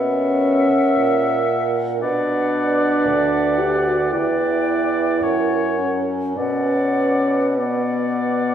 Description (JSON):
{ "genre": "classical, slow romantic movement for wind quintet", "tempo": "50-58 BPM", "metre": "4/4", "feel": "rubato", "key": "B minor", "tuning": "A4 = 441 Hz", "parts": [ { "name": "concert flute", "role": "melody", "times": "0.0-8.5 s", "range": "F#5 to G5", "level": "-27 LUFS", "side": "left 4 dB", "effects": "none" }, { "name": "mellow oboe", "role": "second line", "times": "0.0-8.5 s", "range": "C#5 to E5", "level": "-24 LUFS", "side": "left 1 dB", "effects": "none" }, { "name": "dark clarinet", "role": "accompaniment", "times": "0.0-8.5 s", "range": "A#4 to B4", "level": "-26 LUFS", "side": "right 4 dB", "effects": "none" }, { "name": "mellow French horn", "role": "accompaniment", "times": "0.0-8.5 s", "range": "B3 to G4", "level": "-20 LUFS", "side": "equal", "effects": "none" }, { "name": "mellow bassoon", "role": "bass", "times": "0.0-8.5 s", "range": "D2 to B2", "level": "-23 LUFS", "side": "right 2 dB", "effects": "none" } ], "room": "wet recital hall reverb, RT60 1.7 s", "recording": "heard from further back in the room", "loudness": "-17 LUFS", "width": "side -9 dB against mid", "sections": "0.0-8.5 A section", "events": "none", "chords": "0.0 F#7/B; 2.0 Bm; 4.1 Em7; 5.2 F#; 6.4 Bm" }